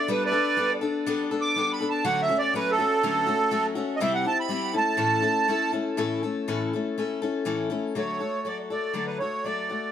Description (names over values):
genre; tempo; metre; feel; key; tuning
rock; 122 BPM; 4/4; straight; D major; A4 = 440 Hz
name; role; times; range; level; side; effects
accordion; melody; 0.0-9.9 s; A4 to D6; -25 LUFS; right 4 dB; light tremolo tuning, tape echo
picked steel-string acoustic guitar; accompaniment; 0.0-9.9 s; A2 to A4; -27 LUFS; left 4 dB; none
room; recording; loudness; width
moderate studio reverb, RT60 0.5 s; none; -23 LUFS; side -9 dB against mid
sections
0.0-6.0 A section; 6.0-8.0 B section; 8.0-9.9 C section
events
accordion solo 0.0-6.0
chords
0.0 Gadd9; 2.0 Dmaj7; 4.0 C; 4.7 A; 8.0 D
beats
| 0.08 0.57 1.06 1.55 | 2.05 2.54 3.03 3.52 | 4.01 4.50 4.99 5.49 | 5.98 6.47 6.97 7.46 | 7.96 8.45 8.95 9.44